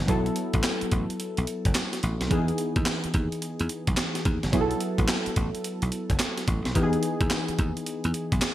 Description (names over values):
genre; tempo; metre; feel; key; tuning
R&B, new jack swing; 108 BPM; 4/4; swing 64% on 16ths; E major; A4 = 440 Hz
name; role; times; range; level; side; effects
warm analog keys; accompaniment; 0.0-8.5 s; E3 to A4; -29 LUFS; equal; chorus
dry thumbed slap bass; bass; 0.0-8.4 s; F#1 to E2; -27 LUFS; equal; none
breakbeat sampler-style drum kit; drums; 0.1-8.5 s; handclaps, hi-hat, kick drum, snare drum; -27 LUFS; equal; gated reverb
room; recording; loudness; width
moderate plate reverb, RT60 1.5 s, digital ambience; bright 1980s-style digital production; -24 LUFS; side -13 dB against mid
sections
0.0-8.5 A section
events
none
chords
0.1 B7sus4; 2.3 Emaj7; 4.5 B7sus4; 6.8 Emaj7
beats
| 0.09 0.64 1.20 1.75 | 2.31 2.86 3.42 3.97 | 4.53 5.08 5.64 6.20 | 6.75 7.31 7.86 8.42